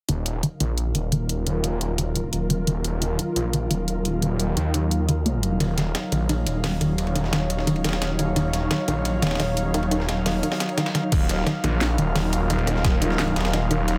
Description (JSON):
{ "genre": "dark technical drum and bass", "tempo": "174 BPM", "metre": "4/4", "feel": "straight", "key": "Eb minor", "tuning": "A4 = 439 Hz", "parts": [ { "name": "swarming drone", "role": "sustained chords", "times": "0.9-14.0 s", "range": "Eb3 to Db5", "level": "-32 LUFS", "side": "equal", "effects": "built-in reverb, sidechain pumping" }, { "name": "unison pluck", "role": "arpeggios", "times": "0.1-13.8 s", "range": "Eb3 to Bb3", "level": "-29 LUFS", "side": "equal", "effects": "sidechain pumping, digital delay" }, { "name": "snarling distorted saw bass", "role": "bass", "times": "0.1-14.0 s", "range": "Eb1 to Eb2", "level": "-27 LUFS", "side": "equal", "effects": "tube saturation, sidechain pumping" }, { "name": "drum and bass drum kit", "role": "drums", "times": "0.1-13.9 s", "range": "crash cymbal, hi-hat, rim click, snare drum", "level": "-31 LUFS", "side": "equal", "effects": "overdrive" }, { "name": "airy breathy pad", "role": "texture", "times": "0.1-14.0 s", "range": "Gb3 to F5", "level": "-33 LUFS", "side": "equal", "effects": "chorus, sidechain pumping" }, { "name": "breakbeat sampler-style drum kit", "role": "drums", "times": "5.6-14.0 s", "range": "hi-hat, ride cymbal, snare drum", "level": "-34 LUFS", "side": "equal", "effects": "high-pass filter on cymbals, high-pass filter on snare, high-pass filter on hats" }, { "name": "electronic kick drum", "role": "drums", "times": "11.1-12.9 s", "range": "none", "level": "-23 LUFS", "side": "equal", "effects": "overdrive" } ], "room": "light reverb", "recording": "none", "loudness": "-23 LUFS", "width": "mono", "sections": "0.1-11.1 A section; 11.1-14.0 B section", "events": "fade-in on analog synth pad 0.1-11.1; filter sweep on synth drone 0.1-11.1; filter sweep on synth arpeggio sound 0.1-11.1", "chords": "0.1 Ebmadd9" }